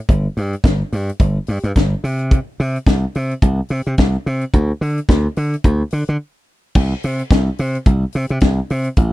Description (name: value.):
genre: disco.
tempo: 108 BPM.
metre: 4/4.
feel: swing 56% on 16ths.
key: unclear.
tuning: A4 = 443 Hz.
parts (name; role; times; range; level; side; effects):
slap bass; bass; 0.1-9.1 s; G1 to D3; -17 LUFS; equal; none.
tight funk drum kit; drums; 0.1-9.1 s; crash cymbal, hi-hat, kick drum, snare drum; -14 LUFS; equal; none.
room: little or no reverb.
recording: none.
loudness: -15 LUFS.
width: side -17 dB against mid.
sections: 0.0-6.8 A section; 6.8-9.1 B section.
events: break 6.2-6.8.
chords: none.